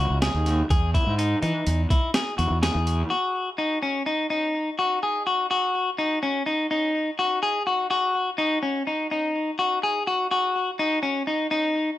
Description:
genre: progressive instrumental, band music in an uneven meter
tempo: 125 BPM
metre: 5/4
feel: straight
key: unclear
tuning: A4 = 439 Hz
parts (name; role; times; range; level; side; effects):
- electric guitar at the edge of break-up; arpeggios; 0.0-11.9 s; C#4 to G#4; -23 LUFS; left 2 dB; ping-pong delay
- fuzz fingered electric bass; bass; 0.0-3.0 s; C#2 to E3; -23 LUFS; equal; overdrive
- boom bap sampler-style drum kit; drums; 0.2-3.0 s; hi-hat, kick drum, snare drum; -24 LUFS; equal; none
room: moderate studio reverb, RT60 0.6 s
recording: none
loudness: -22 LUFS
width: side -13 dB against mid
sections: 0.0-3.1 A section; 3.1-12.0 B section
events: none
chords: 0.0 C#5; 0.7 Emaj7; 3.1 C#sus4 (rootless)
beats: 0.22 | 0.70 1.19 1.67 2.15 2.63 | 3.11 3.59 4.07 4.55 5.03 | 5.51 5.99 6.47 6.95 7.43 | 7.91 8.39 8.87 9.35 9.83 | 10.31 10.79 11.27 11.75

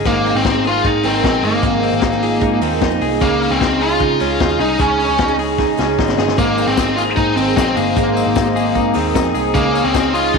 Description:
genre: jangly indie pop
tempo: 152 BPM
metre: 4/4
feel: straight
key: Ab major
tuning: A4 = 440 Hz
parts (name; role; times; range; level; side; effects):
- picked twelve-string acoustic guitar; accompaniment; 0.0-10.4 s; Ab2 to Ab4; -24 LUFS; right 11 dB; none
- soft electric-piano-like synth keys; accompaniment; 0.0-10.4 s; Ab3 to Ab5; -22 LUFS; right 12 dB; chorus
- direct-recorded clean electric guitar; arpeggios; 0.0-10.4 s; Ab2 to Ab4; -22 LUFS; left 9 dB; tape echo
- bluesy overdriven lead guitar; melody; 0.1-10.4 s; Bb3 to F4; -17 LUFS; left 1 dB; distortion
- vintage muted picked electric bass; bass; 0.1-10.4 s; G1 to Db3; -24 LUFS; equal; none
- vintage drum kit; drums; 0.1-10.4 s; hi-hat, kick drum, snare drum; -21 LUFS; left 4 dB; none
- warm analog pad; sustained chords; 6.4-10.4 s; Ab4 to Eb6; -27 LUFS; left 9 dB; chorus
- tambourine; percussion; 6.4-10.2 s; none; -39 LUFS; left 11 dB; none
room: moderate echo chamber reverb, RT60 2.3 s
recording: 1960s-style stereo with parts hard left and right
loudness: -13 LUFS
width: side -4 dB against mid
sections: 0.0-10.4 A section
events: drum fill 5.6-6.4; synth keys fill 5.8-6.4, 9.0-9.5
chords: 0.1 Abadd9; 3.2 Dbsus2; 6.4 Abadd9; 9.5 Dbsus2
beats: | 0.05 0.45 0.84 1.24 | 1.63 2.03 2.42 2.82 | 3.21 3.61 4.00 4.40 | 4.79 5.19 5.59 5.98 | 6.38 6.77 7.17 7.57 | 7.96 8.36 8.76 9.15 | 9.55 9.95 10.34

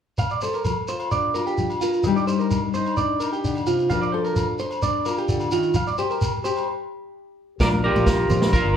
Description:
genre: highlife guitar band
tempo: 129 BPM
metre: 4/4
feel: straight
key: Bb major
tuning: A4 = 442 Hz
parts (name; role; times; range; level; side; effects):
- nylon-string guitar; accompaniment; 0.2-8.8 s; Bb2 to Bb4; -26 LUFS; left 5 dB; none
- electric guitar at the edge of break-up; arpeggios; 0.2-8.8 s; F4 to F5; -25 LUFS; right 4 dB; none
- agogo bells; percussion; 0.2-8.5 s; none; -32 LUFS; left 3 dB; none
- shekere; percussion; 0.2-8.6 s; none; -28 LUFS; right 1 dB; none
- electric guitar at the edge of break-up; melody; 7.6-8.8 s; F4 to D5; -22 LUFS; equal; none
- breathy trumpet; second line; 7.6-8.7 s; F4 to Bb4; -30 LUFS; right 1 dB; none
- fingered electric bass; bass; 7.6-8.8 s; G1 to Bb1; -23 LUFS; equal; none
- vintage drum kit; drums; 7.6-8.6 s; kick drum, snare drum; -22 LUFS; right 1 dB; none
- congas; percussion; 7.7-8.4 s; none; -28 LUFS; equal; none
room: wet large studio reverb, RT60 0.9 s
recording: band playing live in one room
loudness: -20 LUFS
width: side -8 dB against mid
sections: 0.2-7.6 A section; 7.6-8.8 B section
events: stop 6.7-7.6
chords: 0.2 Bbadd9; 2.0 Ebmaj7; 3.9 Bbadd9; 5.8 Fsus2; 7.6 Bbadd9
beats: | 0.18 0.65 1.11 1.58 | 2.04 2.51 2.97 3.44 | 3.90 4.36 4.83 5.29 | 5.76 6.22 6.68 7.15 | 7.61 8.07 8.53

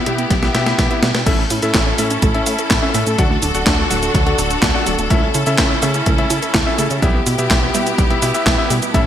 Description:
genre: italo disco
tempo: 125 BPM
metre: 4/4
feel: straight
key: A mixolydian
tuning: A4 = 440 Hz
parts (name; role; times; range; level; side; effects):
- rich symphonic string section; sustained chords; 0.0-9.1 s; D3 to A4; -21 LUFS; equal; none
- wide unison pluck; arpeggios; 0.0-9.0 s; F#3 to A4; -25 LUFS; right 4 dB; digital delay
- clear electric grand piano; stabs; 0.0-9.1 s; B3 to F#5; -22 LUFS; left 2 dB; vintage 12-bit sampler grit, digital delay
- chorused synth bass; bass; 0.1-9.1 s; D1 to C#3; -22 LUFS; equal; none
- gated 80s digital drum machine; drums; 0.1-9.0 s; cabasa, crash cymbal, handclaps, hi-hat, snare drum; -20 LUFS; equal; gated reverb, gated reverb snare
- electronic kick drum; drums; 0.3-9.0 s; none; -19 LUFS; equal; none
room: moderate lush hall reverb, RT60 2.0 s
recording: bright 1980s-style digital production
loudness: -13 LUFS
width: side -10 dB against mid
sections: 0.0-1.3 A section; 1.3-9.1 B section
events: drum fill 0.3-1.3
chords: 0.0 Em/B; 1.3 A; 3.2 D; 5.1 A/C#; 7.0 Em/B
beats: 0.30 0.79 | 1.26 1.75 2.23 2.71 | 3.19 3.67 4.14 4.62 | 5.11 5.58 6.07 6.54 | 7.03 7.50 7.99 8.46 | 8.95

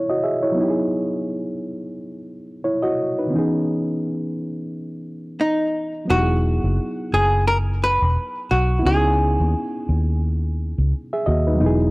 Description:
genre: lo-fi hip hop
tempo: 87 BPM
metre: 4/4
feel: swing 57% on 16ths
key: C# minor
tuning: A4 = 440 Hz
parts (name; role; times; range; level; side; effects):
- archtop guitar, miked and amplified; melody; 0.0-0.2, 5.4-10.2 s; D#4 to B4; -21 LUFS; equal; low-pass filter
- reed electric piano; accompaniment; 0.0-11.9 s; D#3 to E5; -23 LUFS; equal; low-pass filter
- vintage muted fingered electric bass; bass; 6.1-11.9 s; E1 to D#2; -19 LUFS; equal; none
room: light reverb, digital ambience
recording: dry, gritty hardware recording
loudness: -18 LUFS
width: side -23 dB against mid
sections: 0.0-6.1 A section; 6.1-11.9 B section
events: filter sweep 0.0-6.1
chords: 0.0 C#m9; 0.6 Emaj9; 3.3 C#m9; 6.1 Emaj9; 8.8 C#m9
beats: | 0.57 1.26 1.95 2.64 | 3.33 4.02 4.71 5.40 | 6.09 6.78 7.47 8.16 | 8.85 9.54 10.23 10.92 | 11.61

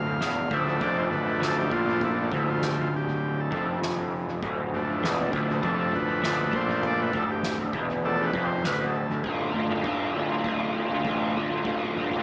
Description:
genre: psychedelic rock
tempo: 100 BPM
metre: 4/4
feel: straight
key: D minor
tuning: A4 = 440 Hz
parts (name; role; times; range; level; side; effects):
- combo organ; sustained chords; 0.0-9.2 s; F3 to F5; -28 LUFS; equal; none
- crunchy overdriven guitar; riff; 0.0-12.2 s; D2 to F4; -27 LUFS; equal; rotary speaker, dub echo
- fuzz picked electric bass; bass; 0.0-12.2 s; D1 to D2; -32 LUFS; equal; overdrive
- soft-mallet drum kit; drums; 0.2-12.2 s; kick drum, snare drum, toms; -35 LUFS; equal; dub echo
room: light reverb, small room ambience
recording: echo-heavy mix, small speaker sound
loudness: -24 LUFS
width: side -39 dB against mid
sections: 0.0-9.2 A section; 9.2-12.2 B section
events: transistor combo organ solo 0.0-9.2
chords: 0.0 Dm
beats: 0.21 0.82 1.42 | 2.02 2.62 3.22 3.83 | 4.43 5.03 5.63 6.23 | 6.83 7.44 8.04 8.64 | 9.24 9.85 10.45 11.05 | 11.65

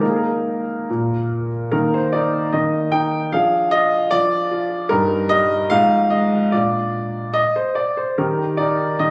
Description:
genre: classical-period piano sonatina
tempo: 70-77 BPM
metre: 2/4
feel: rubato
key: Eb major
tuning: A4 = 439 Hz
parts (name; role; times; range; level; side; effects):
- clear baby grand piano; solo; 0.0-9.1 s; G2 to G5; -19 LUFS; equal; none
room: moderate recital hall reverb, RT60 1.6 s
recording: recorded on a phone in the room, studio ambience, lossy compression artefacts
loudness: -19 LUFS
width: mono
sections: 0.0-1.7 A section; 1.7-9.1 B section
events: none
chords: 0.0 Eb5/Bb; 0.9 N.C.; 1.7 Eb5; 3.3 Ddim/F; 4.9 Eb/G; 5.7 Fm7/Ab; 6.5 Bb; 8.2 Eb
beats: | 0.02 0.88 | 1.73 2.54 | 3.33 4.12 | 4.91 5.71 | 6.53 7.36 | 8.20 9.01

